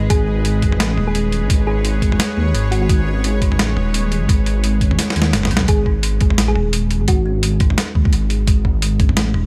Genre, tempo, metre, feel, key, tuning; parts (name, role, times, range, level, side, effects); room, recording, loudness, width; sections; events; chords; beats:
half-time drum and bass; 172 BPM; 4/4; swing 57% on 16ths, half-time; G# phrygian; A4 = 440 Hz
bowed-like drone; sustained chords; 0.0-5.7 s; G#3 to D#5; -31 LUFS; equal; built-in reverb, sidechain pumping
kalimba; arpeggios; 0.0-9.5 s; D#3 to G#4; -26 LUFS; equal; delay
dark detuned saw bass; bass; 0.0-9.5 s; D#1 to D#2; -21 LUFS; equal
thumb-piano-like synth pluck; melody; 0.1-2.9, 5.7-7.6 s; F#4 to G#4; -29 LUFS; equal; chorus, dub echo
boom bap sampler-style drum kit; drums; 0.1-9.4 s; hi-hat, snare drum, toms; -23 LUFS; equal
electronic kick drum; drums; 0.1-9.1 s; -18 LUFS; equal
little or no reverb; -17 LUFS; mono
0.0-5.7 A section; 5.7-9.5 A section
drop 0.0-5.7, 5.7-9.5; drum fill 5.0-5.7
0.0 G#m; 5.7 G#5
| 0.10 0.45 0.80 1.15 | 1.50 1.85 2.20 2.54 | 2.89 3.24 3.59 3.94 | 4.29 4.64 4.99 5.34 | 5.68 6.03 6.38 6.73 | 7.08 7.43 7.78 8.13 | 8.47 8.82 9.17